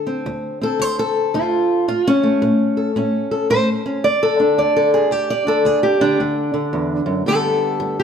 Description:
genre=acoustic country blues, solo or duo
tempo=112 BPM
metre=4/4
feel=swing 64% on 8ths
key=unclear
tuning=A4 = 440 Hz
part: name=fingerpicked old ladder-braced acoustic guitar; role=solo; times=0.0-8.0 s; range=D2 to D5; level=-16 LUFS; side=equal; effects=none
room=wet stone room reverb, RT60 1.4 s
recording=band playing live in one room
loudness=-15 LUFS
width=side -7 dB against mid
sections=0.0-8.0 A section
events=none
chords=0.0 D5; 1.9 A; 4.0 N.C.; 6.2 D; 7.3 G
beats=0.27 0.81 1.35 | 1.89 2.42 2.96 3.50 | 4.04 4.58 5.11 5.65 | 6.19 6.73 7.27 7.81

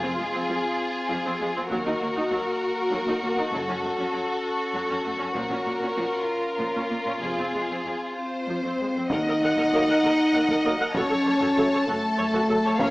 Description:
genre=cinematic, epic orchestral film score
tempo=65 BPM (dotted quarters)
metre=6/8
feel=straight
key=Eb dorian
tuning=A4 = 439 Hz
part: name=warm symphonic violin section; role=melody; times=0.0-12.9 s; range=Ab4 to Eb5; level=-30 LUFS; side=left 1 dB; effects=none
part: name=warm symphonic violin section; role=second line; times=0.0-12.9 s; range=F4 to A5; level=-29 LUFS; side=left 1 dB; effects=none
part: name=dark symphonic viola section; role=accompaniment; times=0.0-12.9 s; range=F3 to Gb5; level=-30 LUFS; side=equal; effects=none
part: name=dark French horn section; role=sustained chords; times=0.0-12.9 s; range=A3 to Bb4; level=-27 LUFS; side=equal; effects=none
part: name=clear symphonic double bass section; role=bass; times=0.0-12.9 s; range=F1 to Eb2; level=-39 LUFS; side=right 1 dB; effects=none
part: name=rich symphonic cello section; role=bass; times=0.0-12.9 s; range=Eb2 to Bb2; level=-36 LUFS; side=right 1 dB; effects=none
part: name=solo taiko drums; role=drums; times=1.7-12.9 s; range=none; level=-33 LUFS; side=equal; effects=none
part: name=timpani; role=percussion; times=9.1-10.0 s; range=Eb3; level=-39 LUFS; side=equal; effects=none
part: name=clear trombone section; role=sustained chords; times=9.7-12.6 s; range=Gb3 to Bb3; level=-32 LUFS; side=right 1 dB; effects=none
room=moderate scoring stage reverb, RT60 1.6 s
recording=small speaker sound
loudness=-22 LUFS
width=side -20 dB against mid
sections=0.0-9.1 A section; 9.1-12.9 B section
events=build-up 0.0-9.1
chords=0.0 Fm; 1.7 Ebm; 3.5 Gbm; 5.4 Bbm; 7.2 Fm; 9.1 Ebm; 11.0 Gbm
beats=0.80 | 1.71 2.62 | 3.54 4.45 | 5.36 6.29 | 7.23 8.17 | 9.11 10.04 | 10.96 11.88 | 12.80

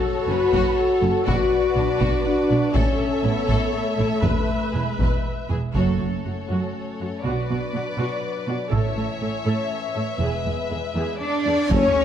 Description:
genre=cinematic, epic orchestral film score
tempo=121 BPM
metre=3/4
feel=straight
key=A major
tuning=A4 = 439 Hz
part: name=warm symphonic violin section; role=melody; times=0.0-12.0 s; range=C#5 to E5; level=-30 LUFS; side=left 4 dB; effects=none
part: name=rich symphonic violin section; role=second line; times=0.0-12.0 s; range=C#4 to D5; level=-31 LUFS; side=left 4 dB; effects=none
part: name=warm symphonic viola section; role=accompaniment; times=0.0-12.0 s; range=D4 to C#5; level=-30 LUFS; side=right 2 dB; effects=none
part: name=mellow French horn section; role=sustained chords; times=0.0-12.0 s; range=E3 to F#4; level=-25 LUFS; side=left 3 dB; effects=none
part: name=warm symphonic cello section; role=bass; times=0.3-12.0 s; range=E2 to D4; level=-27 LUFS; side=right 2 dB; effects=none
part: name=warm symphonic double bass section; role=bass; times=0.3-11.8 s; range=E1 to B1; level=-28 LUFS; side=right 4 dB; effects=none
part: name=taiko ensemble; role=drums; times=0.5-12.0 s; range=none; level=-26 LUFS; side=equal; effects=none
part: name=cymbal swell and sub drop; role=sound effects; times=11.3-12.0 s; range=none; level=-33 LUFS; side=equal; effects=none
part: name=warm woodwind section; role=sustained chords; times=11.7-12.0 s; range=A3 to C#5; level=-27 LUFS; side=left 2 dB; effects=none
part: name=mellow tuba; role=bass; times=11.7-11.8 s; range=F#1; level=-26 LUFS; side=right 3 dB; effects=none
room=wet scoring stage reverb, RT60 1.9 s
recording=dark, warm production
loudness=-20 LUFS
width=side -9 dB against mid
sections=0.0-5.8 A section; 5.8-11.7 B section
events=band accent 5.8-6.3; impact 11.7-12.0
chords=0.0 F#m; 1.3 Bm; 2.8 A; 4.2 E; 5.8 F#m; 7.2 Bm; 8.7 A; 10.2 E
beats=0.29 0.78 | 1.27 1.77 2.26 | 2.75 3.25 3.74 | 4.24 4.75 5.25 | 5.76 6.25 6.75 | 7.25 7.74 8.23 | 8.72 9.21 9.70 | 10.20 10.71 11.21 | 11.71

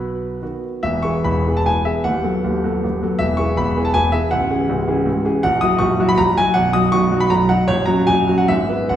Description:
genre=classical, romantic triple-time dance for piano with dotted rhythms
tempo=130-169 BPM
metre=3/4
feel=rubato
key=E major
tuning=A4 = 439 Hz
part: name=warm concert grand piano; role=solo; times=0.0-9.0 s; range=A#0 to D#6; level=-15 LUFS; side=equal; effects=none
room=wet recital hall reverb, RT60 1.4 s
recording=heard from further back in the room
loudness=-15 LUFS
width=side -10 dB against mid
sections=0.8-9.0 A section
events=none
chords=0.0 B; 0.8 E; 2.0 B7/D#; 3.2 E; 4.3 C#m; 5.4 F#7/A#; 6.6 B; 7.7 F#/A#; 8.5 E/G#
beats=0.42 | 0.84 1.25 1.67 | 2.05 2.44 2.84 | 3.20 3.57 3.96 | 4.32 4.70 5.08 | 5.44 5.81 6.19 | 6.55 6.93 7.31 | 7.68 8.08 8.49 | 8.90

